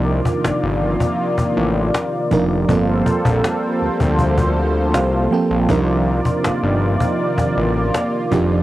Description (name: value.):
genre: contemporary R&B.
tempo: 80 BPM.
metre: 4/4.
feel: straight.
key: unclear.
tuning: A4 = 442 Hz.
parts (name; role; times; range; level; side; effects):
FM electric piano with tremolo; accompaniment; 0.0-8.6 s; F3 to G5; -21 LUFS; right 3 dB; cassette tape.
warm analog pad; sustained chords; 0.0-8.6 s; C3 to D5; -20 LUFS; equal; chorus, cassette tape.
fat analog bass; bass; 0.0-8.6 s; F1 to D2; -19 LUFS; left 1 dB; none.
cajon; drums; 0.1-8.5 s; none; -21 LUFS; left 1 dB; none.
room: moderate studio reverb, RT60 0.5 s.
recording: home recording on cassette.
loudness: -15 LUFS.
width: side -15 dB against mid.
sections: 0.0-8.6 A section.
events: FM electric piano fill 4.6-5.7.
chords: 0.0 Cm11; 2.7 Gm11; 5.7 Cm11.